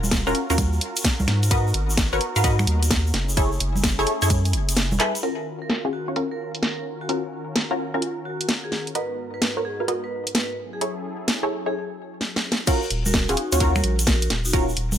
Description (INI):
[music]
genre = UK garage, two-step garage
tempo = 129 BPM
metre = 4/4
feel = swing 66% on 16ths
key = Eb minor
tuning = A4 = 437 Hz
[part]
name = warm analog pad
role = sustained chords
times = 0.0-12.7 s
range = Ab2 to Bb4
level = -35 LUFS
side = equal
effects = chorus, sidechain pumping
[part]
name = saturated sub bass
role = bass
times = 0.0-5.0, 12.9-15.0 s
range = Eb1 to Ab2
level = -23 LUFS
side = equal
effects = none
[part]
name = garage drum kit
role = drums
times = 0.0-15.0 s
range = congas, crash cymbal, finger snaps, handclaps, hi-hat, snare drum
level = -24 LUFS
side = equal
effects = low-pass filter on hats, small room ambience, low-pass filter on snare, low-pass filter on perc, low-pass filter on cymbals
[part]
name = tube shaker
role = percussion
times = 0.0-5.2, 12.7-15.0 s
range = none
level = -32 LUFS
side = left 1 dB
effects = none
[part]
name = electronic kick drum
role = drums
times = 0.1-4.4, 12.7-14.7 s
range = none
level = -23 LUFS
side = equal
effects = small room ambience
[part]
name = punchy chord stab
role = stabs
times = 0.3-14.7 s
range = Db4 to F5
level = -26 LUFS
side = equal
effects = chorus, phaser, ping-pong delay
[part]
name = vibraphone with medium hard mallets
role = melody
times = 5.2-14.5 s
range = Eb4 to Cb5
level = -32 LUFS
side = right 1 dB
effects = vintage 12-bit sampler grit, ping-pong delay
[sound]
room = little or no reverb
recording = none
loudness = -20 LUFS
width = side -10 dB against mid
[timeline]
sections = 0.0-5.2 A section; 5.2-12.7 B section; 12.7-15.0 C section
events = kick drops out 4.8-5.2; drum fill 5.0, 12.2-12.7; drop 12.7-15.0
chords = 0.0 Ebm7; 1.5 Abm7; 3.1 Gbm7; 5.2 Ebm7; 9.0 Abm7; 10.6 Gbm7; 12.7 Ebm7